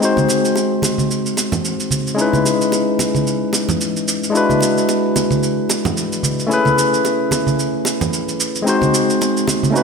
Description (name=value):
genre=sunset chillout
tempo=111 BPM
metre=4/4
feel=swing 57% on 16ths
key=unclear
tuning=A4 = 444 Hz
part: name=barky tine electric piano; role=accompaniment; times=0.0-9.8 s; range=G#3 to B#4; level=-16 LUFS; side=left 2 dB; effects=auto-pan, ping-pong delay
part: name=cabasa and congas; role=drums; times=0.0-9.8 s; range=none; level=-21 LUFS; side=right 3 dB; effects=none
part: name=congas and bongos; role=percussion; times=0.2-9.6 s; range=none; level=-26 LUFS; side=right 2 dB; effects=none
room=wet lush hall reverb, RT60 1.9 s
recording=bright 1980s-style digital production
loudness=-15 LUFS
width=side -5 dB against mid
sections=0.0-9.8 A section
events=none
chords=0.0 G#7; 2.2 C#m7; 4.3 E7; 6.5 Amaj7; 8.7 G#7